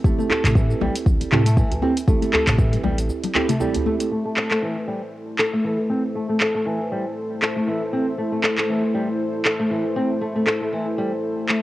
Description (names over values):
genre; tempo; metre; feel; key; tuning
afro house; 118 BPM; 4/4; swing 56% on 16ths; A minor; A4 = 440 Hz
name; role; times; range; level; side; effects
flamenco guitar; arpeggios; 0.0-11.6 s; E3 to A4; -24 LUFS; left 1 dB; sidechain pumping, low-pass filter, cassette tape, analog delay
mellow tine electric piano; stabs; 0.0-4.1 s; C4 to A4; -26 LUFS; right 6 dB; medium stereo tremolo, sidechain pumping, cassette tape, analog delay
warm sub bass; bass; 0.0-3.1 s; A1 to A2; -22 LUFS; equal; sidechain pumping
electronic kick drum; drums; 0.0-2.7 s; none; -19 LUFS; equal; overdrive, small room ambience
congas; percussion; 0.0-4.0 s; none; -29 LUFS; left 8 dB; none
djembe; percussion; 0.0-4.0 s; none; -31 LUFS; right 2 dB; none
afro-pop drum kit; drums; 0.1-11.6 s; handclaps, hi-hat, shaker, toms; -23 LUFS; equal; overdrive, small room ambience
warm analog pad; sustained chords; 4.1-11.6 s; A3 to C5; -26 LUFS; equal; chorus, sidechain pumping, cassette tape
room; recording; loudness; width
light reverb; home recording on cassette; -19 LUFS; side -16 dB against mid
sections
0.0-4.1 A section; 4.1-11.6 B section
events
break 3.1-4.1; filter sweep on nylon-string guitar 4.1-11.6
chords
0.0 Am7; 4.1 Am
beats
| 0.05 0.56 1.06 1.57 | 2.08 2.59 3.10 3.61 | 4.12 4.62 5.13 5.64 | 6.15 6.66 7.17 7.67 | 8.18 8.69 9.20 9.71 | 10.22 10.73 11.23